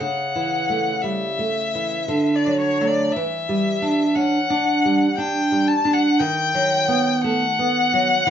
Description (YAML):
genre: romantic duo for violin and classical guitar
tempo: 58 BPM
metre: 3/4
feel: rubato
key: unclear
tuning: A4 = 440 Hz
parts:
  - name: rich violin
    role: melody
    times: 0.0-8.3 s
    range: C#5 to A5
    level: -21 LUFS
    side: left 4 dB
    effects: none
  - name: nylon-string guitar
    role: accompaniment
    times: 0.0-8.3 s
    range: C#3 to D4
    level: -20 LUFS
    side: right 2 dB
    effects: none
room: moderate stone room reverb, RT60 0.9 s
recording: band playing live in one room, nothing above 7.5 kHz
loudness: -18 LUFS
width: side -9 dB against mid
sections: 0.0-8.3 A section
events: none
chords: 0.0 A/C#; 2.1 D; 3.1 Em7; 6.2 B/D#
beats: | 0.01 1.05 2.10 | 3.13 4.16 5.18 | 6.19 7.23 8.25